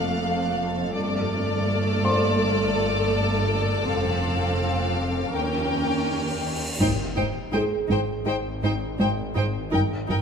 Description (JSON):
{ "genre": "cinematic, suspense film score", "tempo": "82 BPM", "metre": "4/4", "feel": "straight", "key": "unclear", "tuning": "A4 = 444 Hz", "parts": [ { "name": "warm symphonic violin section", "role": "melody", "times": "0.0-10.2 s", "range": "D5 to G5", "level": "-29 LUFS", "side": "left 4 dB", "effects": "none" }, { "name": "rich symphonic violin section", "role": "second line", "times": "0.0-10.2 s", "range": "A4 to C5", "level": "-31 LUFS", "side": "left 1 dB", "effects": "none" }, { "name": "warm studio viola section", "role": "accompaniment", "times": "0.0-10.2 s", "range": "A3 to Eb4", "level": "-29 LUFS", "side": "equal", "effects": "none" }, { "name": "rich symphonic cello section", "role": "bass", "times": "0.0-10.2 s", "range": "Eb2 to Ab2", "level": "-31 LUFS", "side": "right 3 dB", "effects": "none" }, { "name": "rich symphonic double bass section", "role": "bass", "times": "0.0-10.2 s", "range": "F1 to Eb2", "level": "-31 LUFS", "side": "right 2 dB", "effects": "none" }, { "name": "bowed-like drone", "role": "drone", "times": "0.0-10.2 s", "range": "G1 to F2", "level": "-33 LUFS", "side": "equal", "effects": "built-in reverb, phaser" }, { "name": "felt-muted upright piano", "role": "texture", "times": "0.0-9.8 s", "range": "Ab4 to C6", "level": "-32 LUFS", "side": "right 1 dB", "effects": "none" }, { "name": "rich studio violin section", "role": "texture", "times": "0.0-6.4 s", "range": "D6 to F6", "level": "-35 LUFS", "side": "left 2 dB", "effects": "none" }, { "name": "cymbal swell and impact", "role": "sound effects", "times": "5.6-9.7 s", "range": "none", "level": "-33 LUFS", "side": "equal", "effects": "none" }, { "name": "plucky analog bass", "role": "riff", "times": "6.8-10.2 s", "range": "G2 to Ab3", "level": "-27 LUFS", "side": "right 1 dB", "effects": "none" } ], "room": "moderate scoring stage reverb, RT60 1.8 s", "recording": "none", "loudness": "-22 LUFS", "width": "side -6 dB against mid", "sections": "0.0-6.8 A section; 6.8-10.2 B section", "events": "cymbal swell 5.6-6.8; impact 6.8-9.7", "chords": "0.0 F; 1.0 Gsus2; 3.9 F; 5.3 Eb7; 6.8 Abmaj7" }